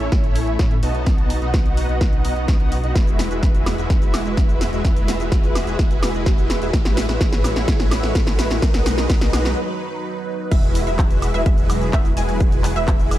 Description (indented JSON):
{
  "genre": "EDM, festival progressive house",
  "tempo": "127 BPM",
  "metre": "4/4",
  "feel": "straight",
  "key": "E major",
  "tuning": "A4 = 440 Hz",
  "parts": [
    { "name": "lush unison pad", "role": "sustained chords", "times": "0.0-13.2 s", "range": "F#3 to E5", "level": "-30 LUFS", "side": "right 1 dB", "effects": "chorus, phaser, sidechain pumping" },
    { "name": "supersaw chords", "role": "riff", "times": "0.0-13.2 s", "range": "G#3 to A5", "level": "-25 LUFS", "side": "equal", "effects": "ensemble chorus, sidechain pumping, low-pass filter, dub echo" },
    { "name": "detuned saw bass", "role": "bass", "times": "0.0-13.2 s", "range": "E1 to A2", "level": "-24 LUFS", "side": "equal", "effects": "tube saturation, sidechain pumping" },
    { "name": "big-room dance drum kit", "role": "drums", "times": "0.0-13.2 s", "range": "crash cymbal, handclaps, hi-hat, shaker, snare drum, woodblock", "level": "-26 LUFS", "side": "equal", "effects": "studio reverb" },
    { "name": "riser", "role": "sound effects", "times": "0.3-9.6 s", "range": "none", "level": "-32 LUFS", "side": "left 1 dB", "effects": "none" },
    { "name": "electronic kick drum", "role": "drums", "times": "0.1-13.0 s", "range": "none", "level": "-17 LUFS", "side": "equal", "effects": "studio reverb" },
    { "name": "wide unison pluck", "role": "arpeggios", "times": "10.5-13.2 s", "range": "E5 to G#5", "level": "-28 LUFS", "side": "right 1 dB", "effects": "analog chorus, sidechain pumping, dub echo" }
  ],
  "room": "light reverb",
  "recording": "dark, warm production",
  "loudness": "-16 LUFS",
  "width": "side -14 dB against mid",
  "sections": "0.0-10.5 A section; 10.5-13.2 B section",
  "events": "build-up 0.0-10.5; drum fill 0.0-9.6; riser 0.3-9.6; break 9.6-10.5; drop 10.5-13.2",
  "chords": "0.0 A; 1.1 B; 3.0 Eadd9; 6.7 A; 8.6 B; 10.5 Eadd9"
}